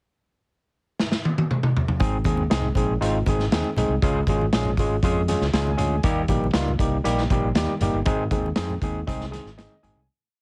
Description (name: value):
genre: uptempo 1960s-style soul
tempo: 119 BPM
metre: 4/4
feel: straight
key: Ab major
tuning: A4 = 444 Hz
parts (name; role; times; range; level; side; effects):
- vintage drum kit; drums; 1.0-10.0 s; hi-hat, kick drum, snare drum, toms; -27 LUFS; equal; none
- overdriven tine electric piano; accompaniment; 2.0-10.1 s; G3 to Ab5; -27 LUFS; equal; none
- modern bright fingered electric bass; bass; 2.0-10.1 s; Gb1 to F2; -28 LUFS; equal; none
- congas; percussion; 2.0-10.0 s; none; -35 LUFS; equal; none
room: light reverb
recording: heavily compressed radio sound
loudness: -23 LUFS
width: mono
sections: 0.0-2.0 pickup bar; 2.0-10.1 A section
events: drum fill 1.0-2.0; tine electric piano fill 5.3-6.0, 9.3-10.1; fade-out 8.1-10.1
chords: 0.0 N.C.; 2.0 Ab; 4.0 Db; 6.0 Eb; 8.1 Ab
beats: 0.48 0.98 1.49 | 2.00 2.50 3.01 3.52 | 4.02 4.53 5.03 5.54 | 6.04 6.55 7.05 7.55 | 8.06 8.57 9.07 9.58